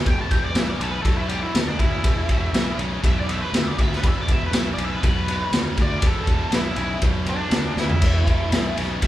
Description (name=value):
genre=blues rock power trio and southern rock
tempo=120 BPM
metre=4/4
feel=straight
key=unclear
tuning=A4 = 439 Hz
part: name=tight distorted guitar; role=riff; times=0.0-9.1 s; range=E2 to C#3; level=-28 LUFS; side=equal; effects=distortion
part: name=octave-fuzz lead guitar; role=melody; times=0.1-9.1 s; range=D4 to A5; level=-28 LUFS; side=equal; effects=wah, distortion
part: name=fuzz fingered electric bass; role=bass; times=0.1-9.1 s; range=E1 to D2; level=-28 LUFS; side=equal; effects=overdrive
part: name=raw garage drum kit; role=drums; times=0.1-9.1 s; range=crash cymbal, kick drum, ride cymbal, snare drum, toms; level=-21 LUFS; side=equal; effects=none
room=light reverb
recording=band playing live in one room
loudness=-19 LUFS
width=side -14 dB against mid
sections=0.0-9.1 A section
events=lead electric guitar solo 0.0-9.1; drum fill 7.8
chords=0.0 E5